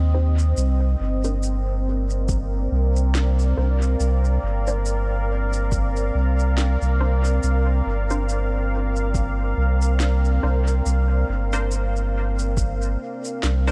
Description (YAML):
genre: ambient dub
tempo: 70 BPM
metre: 4/4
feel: swing 57% on 16ths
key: unclear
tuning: A4 = 437 Hz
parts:
  - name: deep dark ambient pad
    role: sustained chords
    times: 0.0-13.7 s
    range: C4 to G5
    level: -30 LUFS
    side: equal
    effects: chorus, built-in reverb
  - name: warm sub bass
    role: bass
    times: 0.0-13.7 s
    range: G1 to Eb2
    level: -22 LUFS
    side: equal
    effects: tube saturation
  - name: filtered dub chord stab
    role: stabs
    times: 0.1-13.7 s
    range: D4 to C5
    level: -36 LUFS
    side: equal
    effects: phaser, dub echo
  - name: electronic shaker and snare drum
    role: drums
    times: 0.4-13.7 s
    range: none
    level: -35 LUFS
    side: equal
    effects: dub echo
  - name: electronic kick drum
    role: drums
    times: 2.3-12.8 s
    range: none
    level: -28 LUFS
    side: equal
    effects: overdrive
room: light reverb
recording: none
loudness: -22 LUFS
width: mono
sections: 0.0-13.7 A section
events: none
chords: 0.0 Cm; 0.6 Bbadd9